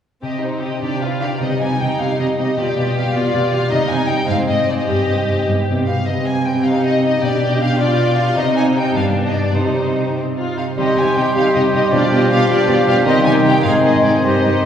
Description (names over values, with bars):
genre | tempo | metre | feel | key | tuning
classical | 97-107 BPM (dotted quarters) | 6/8 | rubato | C minor | A4 = 441 Hz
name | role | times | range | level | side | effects
warm symphonic violin section | melody | 0.2-14.7 s | B4 to Ab5 | -21 LUFS | left 1 dB | none
rich symphonic violin section | second line | 0.2-14.6 s | C4 to C5 | -22 LUFS | left 1 dB | none
dark symphonic viola section | accompaniment | 0.2-14.6 s | Eb3 to G4 | -22 LUFS | right 1 dB | none
concert harp | arpeggios | 0.2-14.7 s | G2 to F5 | -22 LUFS | left 1 dB | none
warm symphonic cello section | bass | 0.2-14.5 s | G2 to C3 | -21 LUFS | right 2 dB | none
clear oboe | second line | 10.8-14.7 s | G4 to Ab4 | -24 LUFS | right 1 dB | none
concert flute | second line | 10.8-14.7 s | C6 to D6 | -24 LUFS | left 1 dB | none
warm bassoon | accompaniment | 10.8-14.7 s | Eb3 to G3 | -20 LUFS | right 1 dB | none
mellow French horn section | sustained chords | 10.8-14.7 s | G3 to G4 | -20 LUFS | left 2 dB | none
room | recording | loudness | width
wet concert hall reverb, RT60 2.4 s | heard from further back in the room | -14 LUFS | side -8 dB against mid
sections
0.2-1.4 A section; 1.4-10.8 B section; 10.8-14.7 B section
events
none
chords
0.2 Cm; 0.8 G7/C; 1.4 Cm; 2.6 G7/B; 3.7 Cm; 4.3 Ab; 4.9 Cm/G; 5.5 G; 6.1 Cm; 7.2 G7/B; 8.4 Cm; 9.0 G; 9.6 Cm; 11.9 G7/B; 13.1 Cm; 13.6 Ab